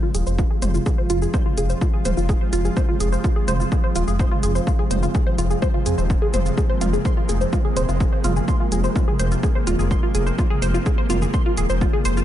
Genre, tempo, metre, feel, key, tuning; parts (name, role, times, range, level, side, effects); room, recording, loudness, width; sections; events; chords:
melodic techno; 126 BPM; 4/4; straight; F minor; A4 = 441 Hz
lush unison pad; sustained chords; 0.0-12.2 s; C3 to F4; -26 LUFS; equal; chorus, sidechain pumping
tight sequenced synth; arpeggios; 0.0-12.2 s; F4 to C6; -26 LUFS; right 1 dB; chorus, phaser, cassette tape, sidechain pumping, analog delay
swelling detuned saw bass; bass; 0.1-12.2 s; Eb1 to F2; -22 LUFS; equal; tube saturation, sidechain pumping
techno drum kit; drums; 0.1-12.2 s; hi-hat, shaker, toms; -30 LUFS; equal; sidechain pumping on toms, sidechain pumping on hats, sidechain pumping on cymbals, sidechain pumping on perc
electronic kick drum; drums; 0.4-11.9 s; -21 LUFS; equal
light reverb; nothing above 10.9 kHz; -18 LUFS; side -12 dB against mid
0.0-12.2 A section
filter sweep on synth arpeggio sound 0.0-12.2
0.0 Fm